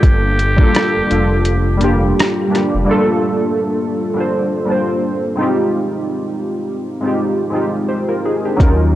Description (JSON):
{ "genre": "lo-fi hip hop", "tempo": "84 BPM", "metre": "4/4", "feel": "swing 58% on 16ths", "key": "unclear", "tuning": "A4 = 440 Hz", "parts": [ { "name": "trumpet with metal mute", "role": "melody", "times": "0.0-2.2 s", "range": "G4", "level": "-21 LUFS", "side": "equal", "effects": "low-pass filter, tape echo" }, { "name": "warbly lo-fi synth keys", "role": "accompaniment", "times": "0.0-9.0 s", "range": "Gb3 to C5", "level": "-16 LUFS", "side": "equal", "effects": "chorus, cassette tape, low-pass filter" }, { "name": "smooth gliding synth bass", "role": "bass", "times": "0.0-2.9, 8.6-9.0 s", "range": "F1 to Eb2", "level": "-16 LUFS", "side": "equal", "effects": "transformer saturation" }, { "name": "boom bap sampler-style drum kit", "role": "drums", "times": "0.0-2.7, 8.6-8.8 s", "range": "hi-hat, kick drum, rim click", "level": "-13 LUFS", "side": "equal", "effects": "vintage 12-bit sampler grit" } ], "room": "light reverb", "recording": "dry, gritty hardware recording, cassette tape", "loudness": "-14 LUFS", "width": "side -14 dB against mid", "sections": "0.0-2.9 A section; 2.9-9.0 B section", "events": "kick muted 1.5-2.9", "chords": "0.0 Gm9; 5.4 Fm9", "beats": "| 0.03 0.74 1.46 2.17 | 2.89 3.60 4.32 5.03 | 5.74 6.46 7.17 7.89 | 8.60" }